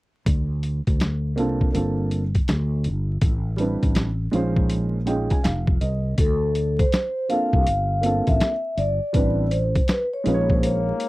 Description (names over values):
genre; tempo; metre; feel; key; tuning
hip hop, jazz-hop; 81 BPM; 4/4; swing 64% on 16ths; D minor; A4 = 439 Hz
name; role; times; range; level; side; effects
fretless electric bass; bass; 0.3-10.9 s; F1 to D2; -23 LUFS; equal; lush chorus
boom bap sampler-style drum kit; drums; 0.3-11.1 s; hi-hat, kick drum, snare drum; -21 LUFS; equal; none
dark baby grand piano; accompaniment; 1.4-11.1 s; G3 to Ab5; -25 LUFS; right 2 dB; none
vibraphone with soft mallets; melody; 6.2-11.1 s; A4 to F5; -24 LUFS; left 1 dB; none
clear trombone; second line; 10.6-11.1 s; Bb3; -29 LUFS; left 5 dB; none
room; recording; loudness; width
little or no reverb; dry, close 1970s-style studio recording, vinyl crackle; -20 LUFS; side -18 dB against mid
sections
0.3-6.2 A section; 6.2-11.1 B section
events
grand piano fill 4.7-6.2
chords
0.3 Dm7; 1.7 Gm11; 3.2 Am11; 4.3 Bbm11; 6.2 Dm7; 7.7 Gm11; 9.1 Am11; 10.3 Bbm7